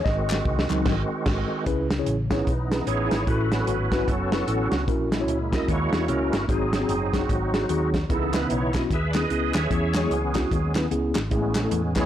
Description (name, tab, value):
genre	uptempo gospel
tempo	149 BPM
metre	4/4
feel	swing 60% on 8ths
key	C# minor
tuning	A4 = 440 Hz
part	mellow tine electric piano	accompaniment	0.0-12.1 s	G#2 to D#5	-27 LUFS	left 2 dB	medium stereo tremolo
part	bright tonewheel organ	sustained chords	0.0-12.1 s	D#3 to E5	-28 LUFS	right 2 dB	fast rotary speaker, chorus vibrato
part	hollow-body short-scale fingered electric bass	bass	0.1-12.1 s	F#1 to E2	-28 LUFS	equal	none
part	warm soul drum kit	drums	0.1-12.0 s	crash cymbal, hi-hat, kick drum, snare drum	-27 LUFS	equal	none
part	group handclap	percussion	0.3-0.8, 8.3-12.0 s	none	-36 LUFS	left 3 dB	none
room	moderate large studio reverb, RT60 1.3 s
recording	blown-out, overdriven recording, overdrive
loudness	-22 LUFS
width	side -11 dB against mid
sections	0.0-1.7 A section; 1.7-12.1 B section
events	tine electric piano solo 0.0-1.7; drum fill 0.1-1.7; band accent 0.9-1.7; tonewheel organ solo 1.7-12.1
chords	0.1 G#7; 1.7 C#m7; 3.3 A6; 4.9 F#7/A#; 6.5 G#7; 8.1 C#m7; 9.7 E6; 11.3 Amaj7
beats	| 0.06 0.46 0.86 1.26 | 1.66 2.06 2.47 2.87 | 3.27 3.67 4.07 4.48 | 4.88 5.28 5.68 6.08 | 6.49 6.89 7.29 7.69 | 8.10 8.50 8.90 9.30 | 9.71 10.11 10.51 10.91 | 11.31 11.72